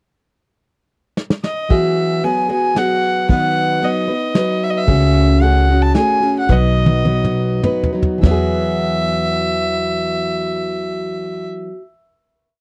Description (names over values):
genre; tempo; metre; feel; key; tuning
acoustic folk duo or small band; 98-114 BPM; 3/4; straight; E major; A4 = 442 Hz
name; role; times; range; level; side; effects
soft brush drum kit; drums; 1.2-8.4 s; kick drum, ride cymbal, snare drum, toms; -19 LUFS; equal; none
warm fiddle; melody; 1.4-11.5 s; D#5 to A5; -22 LUFS; equal; none
picked plugged-in steel-string acoustic guitar; accompaniment; 1.7-11.8 s; B2 to B4; -21 LUFS; equal; none
upright bass; bass; 4.9-11.5 s; B1 to E2; -20 LUFS; equal; none
room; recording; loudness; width
little or no reverb; dry, close 1970s-style studio recording; -17 LUFS; mono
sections
0.1-1.7 pickup bar; 1.7-8.2 verse; 8.2-11.9 final chord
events
drum fill 1.2-1.7, 6.5-8.2; slowing down 4.9-8.2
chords
0.1 N.C.; 1.7 Eadd9; 3.3 B/D#; 4.9 F#madd9/C#; 6.5 B; 8.2 Eadd9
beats
| 0.11 0.64 1.18 | 1.71 2.24 2.77 | 3.30 3.83 4.36 | 4.88 5.42 5.95 | 6.50 7.06 7.63 | 8.23 8.84 9.45 | 10.06 10.67 11.28